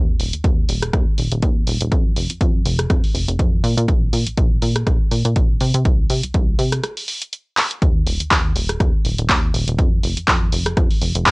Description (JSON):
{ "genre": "filtered disco house", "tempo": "122 BPM", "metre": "4/4", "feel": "swing 55% on 16ths", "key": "unclear", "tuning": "A4 = 441 Hz", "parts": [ { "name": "plucky analog bass", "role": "bass", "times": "0.0-11.3 s", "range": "Eb1 to C3", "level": "-21 LUFS", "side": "equal", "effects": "sidechain pumping, low-pass filter" }, { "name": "punchy analog drum machine", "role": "drums", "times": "0.2-11.3 s", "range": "handclaps, hi-hat, rim click", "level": "-21 LUFS", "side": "equal", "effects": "sidechain pumping on hats, cassette tape" }, { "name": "electronic kick drum", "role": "drums", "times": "0.4-11.3 s", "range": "none", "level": "-18 LUFS", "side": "equal", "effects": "cassette tape" } ], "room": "little or no reverb", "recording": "home recording on cassette", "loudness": "-16 LUFS", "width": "side -30 dB against mid", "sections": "0.0-11.3 A section", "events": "break 6.8-7.8; drum fill 7.6", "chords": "none", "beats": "0.44 0.94 1.43 | 1.92 2.41 2.90 3.40 | 3.89 4.38 4.87 5.36 | 5.85 6.35 6.84 7.33 | 7.82 8.31 8.80 9.30 | 9.79 10.28 10.77 11.26" }